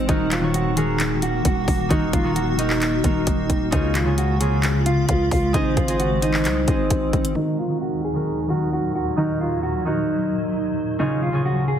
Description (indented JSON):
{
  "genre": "hip hop, trap",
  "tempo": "132 BPM",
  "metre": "4/4",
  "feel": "half-time",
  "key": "Eb dorian",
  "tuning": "A4 = 440 Hz",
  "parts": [
    { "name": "mellow electric guitar", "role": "melody", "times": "0.0-11.8 s", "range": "Eb4 to Ab4", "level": "-25 LUFS", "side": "right 2 dB", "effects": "low-pass filter" },
    { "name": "concert harp", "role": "accompaniment", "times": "0.0-11.8 s", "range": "Db3 to Eb5", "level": "-24 LUFS", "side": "equal", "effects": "low-pass filter" },
    { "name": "granular cloud pad", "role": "sustained chords", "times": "0.0-11.8 s", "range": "Db2 to Gb4", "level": "-27 LUFS", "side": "left 1 dB", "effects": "built-in reverb, low-pass filter" },
    { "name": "growling 808-style bass", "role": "bass", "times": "0.0-7.4 s", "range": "Eb1 to Db2", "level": "-24 LUFS", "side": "equal", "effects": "none" },
    { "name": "trap drum kit", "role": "drums", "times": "0.1-7.4 s", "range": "handclaps, hi-hat, kick drum", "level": "-24 LUFS", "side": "equal", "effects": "none" }
  ],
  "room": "light reverb",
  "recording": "heavily compressed radio sound, multiband compression",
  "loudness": "-19 LUFS",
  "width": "side -9 dB against mid",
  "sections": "0.0-7.4 A section; 7.4-11.8 B section",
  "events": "filter sweep 7.4-11.8",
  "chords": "0.1 Ebm; 3.7 Db; 5.5 Ab; 7.4 Ebm; 11.0 Db"
}